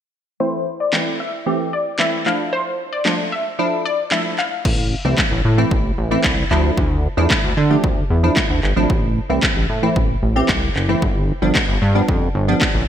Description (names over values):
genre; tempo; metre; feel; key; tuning
dance-pop; 113 BPM; 4/4; straight; A minor; A4 = 444 Hz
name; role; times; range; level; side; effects
analog pluck; melody; 0.4-4.5 s; C5 to F5; -23 LUFS; left 3 dB; chorus, low-pass filter, digital delay
wavetable chord stab; accompaniment; 0.4-12.7 s; E3 to G4; -21 LUFS; right 1 dB; sidechain pumping, low-pass filter
punchy analog drum machine; drums; 0.9-12.7 s; crash cymbal, handclaps, kick drum, snare drum; -20 LUFS; equal; gated reverb
chorused synth bass; bass; 4.7-12.8 s; F#1 to D3; -18 LUFS; equal; sidechain pumping
room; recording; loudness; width
light reverb; bright 1980s-style digital production; -16 LUFS; side -10 dB against mid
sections
0.4-4.7 A section; 4.7-12.9 B section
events
filter sweep 0.4-4.7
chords
0.4 Am; 2.3 Dmadd9; 4.7 Am; 6.5 Dmadd9; 8.9 Am; 11.0 G7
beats
| 0.40 0.93 1.47 2.00 | 2.53 3.06 3.59 4.12 | 4.65 5.18 5.71 6.24 | 6.78 7.31 7.84 8.37 | 8.90 9.43 9.96 10.49 | 11.02 11.55 12.09 12.62